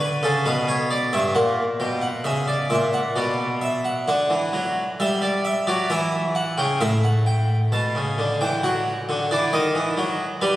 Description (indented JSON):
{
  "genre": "classical, baroque-style two-part invention for harpsichord",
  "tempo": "66 BPM",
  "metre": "3/4",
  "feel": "straight",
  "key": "unclear",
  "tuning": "A4 = 438 Hz",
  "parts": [
    { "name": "harpsichord", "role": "solo", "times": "0.0-10.6 s", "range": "G2 to A5", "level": "-20 LUFS", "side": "equal", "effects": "none" }
  ],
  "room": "wet church reverb, RT60 2.9 s",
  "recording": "recorded on a phone in the room, club reverb",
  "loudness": "-20 LUFS",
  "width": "side -15 dB against mid",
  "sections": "0.0-4.1 A section; 4.1-10.6 B section",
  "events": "none",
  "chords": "0.5 C#m7b5/B; 1.4 F#7/A#; 3.2 Bm; 4.1 Dadd9; 5.9 Em; 6.8 A; 8.6 D/F#; 9.5 B/D#"
}